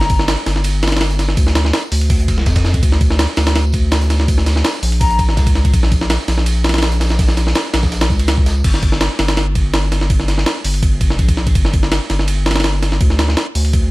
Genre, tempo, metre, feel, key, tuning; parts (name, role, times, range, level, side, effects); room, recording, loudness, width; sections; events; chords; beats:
drum and bass, jungle; 165 BPM; 4/4; straight; A4 = 441 Hz
mellow hollow jazz flute; melody; 0.0-0.2, 5.0-5.2 s; Bb5; -23 LUFS; left 3 dB; dub echo
saturated sub bass; bass; 0.0-13.9 s; F1 to F2; -16 LUFS; equal
breakbeat sampler-style drum kit; drums; 0.0-13.8 s; crash cymbal, hi-hat, kick drum, ride cymbal, snare drum; -15 LUFS; equal; studio reverb
crunchy breakbeat drum kit; drums; 0.0-8.6 s; hi-hat, snare drum, tambourine; -29 LUFS; right 1 dB; high-pass filter on hats, studio reverb, high-pass filter on snare, high-pass filter on perc, high-pass filter on room
little or no reverb; vinyl crackle; -13 LUFS; side -20 dB against mid
0.0-8.6 A section; 8.6-13.9 A section
drop 0.0-8.6, 8.6-13.9
0.0 N.C.; 5.0 Bbm; 8.6 N.C.
0.28 0.64 1.01 | 1.37 1.74 2.10 2.46 | 2.83 3.19 3.55 3.92 | 4.28 4.64 5.01 5.37 | 5.74 6.10 6.46 6.83 | 7.19 7.55 7.92 8.28 | 8.64 9.01 9.37 9.73 | 10.10 10.46 10.83 11.19 | 11.55 11.92 12.28 12.64 | 13.01 13.37 13.73